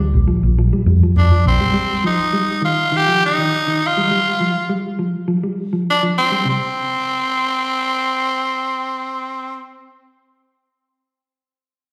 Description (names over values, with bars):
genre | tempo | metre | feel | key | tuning
afrobeat | 102 BPM | 4/4 | swing 54% on 16ths | unclear | A4 = 441 Hz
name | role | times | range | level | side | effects
mellow electric guitar | arpeggios | 0.0-6.6 s | C3 to G3 | -23 LUFS | equal | slapback echo, plate reverb
hollow-body short-scale fingered electric bass | bass | 0.0-1.7 s | Bb1 to F2 | -16 LUFS | equal | none
growling tenor saxophone | melody | 1.2-9.6 s | C4 to G4 | -20 LUFS | equal | plate reverb, slapback echo
room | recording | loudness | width
moderate club reverb, RT60 0.5 s | live gig heard through the venue's PA, recital hall reverb | -18 LUFS | mono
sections
0.0-6.5 A section; 6.5-8.8 B section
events
none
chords
0.0 Bb5; 1.7 Ebadd9; 4.1 Fsus2; 6.5 N.C.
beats
0.57 1.16 | 1.75 2.34 2.93 3.52 | 4.10 4.69 5.28 5.87 | 6.46 7.04 7.63 8.22